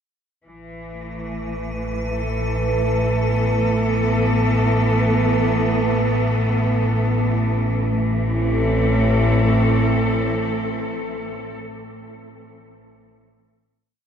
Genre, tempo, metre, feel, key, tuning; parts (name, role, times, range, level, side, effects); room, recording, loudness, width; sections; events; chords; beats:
dark ambient drone; free time; A minor; A4 = 445 Hz
analog drone; drone; 1.2-11.2 s; A1 to A2; -21 LUFS; equal; chorus
icy glass pad; texture; 1.2-8.0 s; B4; -28 LUFS; right 3 dB; chorus, built-in reverb
rich studio cello section; sustained chords; 0.5-11.6 s; E3 to A4; -22 LUFS; equal
wet cathedral reverb, RT60 5.0 s; in a vast, echoing space; -17 LUFS; side -8 dB against mid
0.4-7.9 A section; 7.9-11.7 final chord
filter sweep on synth drone 0.4-7.9
0.4 Asus2; 7.9 Am
free time